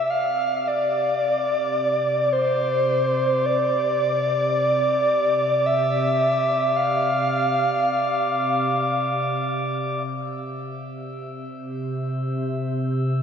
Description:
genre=ambient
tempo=free time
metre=none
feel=none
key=C major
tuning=A4 = 440 Hz
part: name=breathy flute-like synth lead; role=melody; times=0.0-9.5 s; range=C5 to F5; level=-21 LUFS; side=equal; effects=chorus, shimmer reverb, diffuse ambient delay
part: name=organ-like drone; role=drone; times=0.0-13.2 s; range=C3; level=-28 LUFS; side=equal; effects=ensemble chorus, built-in reverb
part: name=glass harmonica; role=texture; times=0.0-13.2 s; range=D5 to E6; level=-28 LUFS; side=equal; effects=shimmer reverb
room=wet cathedral reverb, RT60 5.0 s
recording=in a vast, echoing space, nothing above 7.7 kHz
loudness=-20 LUFS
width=side -7 dB against mid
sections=0.0-10.1 A section; 10.1-13.2 B section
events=fade-in on synth drone 0.0-10.1; fade-in on glass harmonica 0.0-10.1, 10.1-13.2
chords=0.0 Csus24

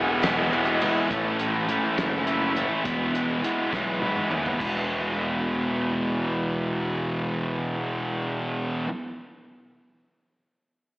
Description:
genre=indie rock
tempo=69 BPM (dotted quarters)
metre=6/8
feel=straight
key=E major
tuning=A4 = 440 Hz
part: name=overdriven combo organ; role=sustained chords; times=0.0-1.1 s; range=E4 to G#5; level=-32 LUFS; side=equal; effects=lush chorus
part: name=thick fuzz guitar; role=riff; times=0.0-8.9 s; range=E2 to E4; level=-25 LUFS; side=equal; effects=distortion, slapback echo
part: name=fuzz picked electric bass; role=bass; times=0.0-8.8 s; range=E1 to D#2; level=-32 LUFS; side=equal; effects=overdrive
part: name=cloth-damped thuddy drum kit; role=drums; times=0.2-4.7 s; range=crash cymbal, hi-hat, kick drum, ride cymbal, snare drum, toms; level=-30 LUFS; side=equal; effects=none
part: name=group handclap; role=percussion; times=0.2-0.9 s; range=none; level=barely audible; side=none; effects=none
room=wet lush hall reverb, RT60 1.8 s, small room ambience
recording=big arena sound, AM radio sound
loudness=-23 LUFS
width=side -23 dB against mid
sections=0.0-1.1 A section; 1.1-4.6 B section; 4.6-8.1 C section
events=drum fill 3.7-4.6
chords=0.0 Emaj7; 1.1 A6; 2.8 Emaj7; 4.6 E

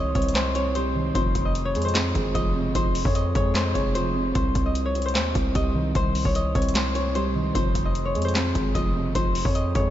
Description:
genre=hip hop, trap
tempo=150 BPM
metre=4/4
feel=half-time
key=unclear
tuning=A4 = 442 Hz
part: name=concert harp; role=melody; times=0.0-9.9 s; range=C5 to Eb5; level=-28 LUFS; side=left 2 dB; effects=analog delay
part: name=felt-muted upright piano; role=accompaniment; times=0.0-9.9 s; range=F2 to C5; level=-28 LUFS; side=right 2 dB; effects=none
part: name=distorted 808-style bass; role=bass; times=0.0-9.9 s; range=F1 to F2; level=-27 LUFS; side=equal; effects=distortion
part: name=booming analog drum machine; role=drums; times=0.2-9.9 s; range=handclaps, hi-hat, kick drum, snare drum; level=-26 LUFS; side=equal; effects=none
room=moderate cathedral reverb, RT60 7.2 s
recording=dreamy mix soaked in reverb, nothing above 7.8 kHz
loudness=-21 LUFS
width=side -12 dB against mid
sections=0.0-9.9 A section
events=none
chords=0.0 Cm; 1.2 Fm; 4.4 Cm; 7.6 Fm

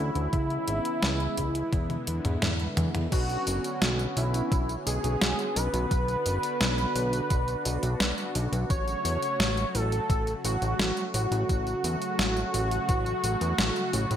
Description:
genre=synthwave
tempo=86 BPM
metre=4/4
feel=straight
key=unclear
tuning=A4 = 439 Hz
part: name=wide unison lead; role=melody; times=0.0-14.2 s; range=E4 to C#5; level=-30 LUFS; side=equal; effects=digital delay
part: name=warm analog pad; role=sustained chords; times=0.0-14.2 s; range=C#3 to F#4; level=-34 LUFS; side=equal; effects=chorus, sidechain pumping
part: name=fat analog bass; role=bass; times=0.0-14.2 s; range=F#1 to E2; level=-29 LUFS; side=equal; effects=sidechain pumping
part: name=detuned 8-bit digital drum machine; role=drums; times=0.2-14.2 s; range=crash cymbal, hi-hat, snare drum, tambourine, toms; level=-30 LUFS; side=equal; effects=overdrive, gated reverb
part: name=electronic kick drum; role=drums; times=0.3-13.0 s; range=none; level=-27 LUFS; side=equal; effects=overdrive
room=light reverb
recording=bright 1980s-style digital production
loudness=-25 LUFS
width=side -9 dB against mid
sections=0.0-3.1 A section; 3.1-14.2 B section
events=drum fill 1.7-3.1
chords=0.3 C#m7; 1.7 E7; 3.1 Bmadd9; 8.7 F#m/A

